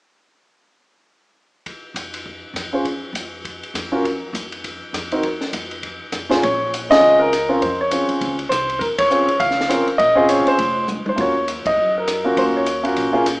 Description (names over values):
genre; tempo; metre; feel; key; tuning
jazz piano trio; 202 BPM; 4/4; swing 60% on 8ths; Bb minor; A4 = 441 Hz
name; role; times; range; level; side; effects
compact cocktail drum kit; drums; 1.7-13.3 s; hi-hat, kick drum, ride cymbal, rim click, snare drum, toms; -26 LUFS; left 1 dB; none
upright bass; bass; 1.9-13.4 s; F1 to Gb2; -34 LUFS; equal; none
warm grand piano; melody; 2.7-13.2 s; Bb2 to F5; -16 LUFS; equal; none
room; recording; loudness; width
moderate recital hall reverb, RT60 1.7 s; recorded in a church or concert hall, small speaker sound; -16 LUFS; side -25 dB against mid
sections
1.7-6.4 A section; 6.4-13.4 B section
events
band accent 6.9, 8.9, 11.6; drum fill 10.9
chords
1.7 F5; 5.2 N.C.; 5.8 Bbm9; 11.2 Ebm9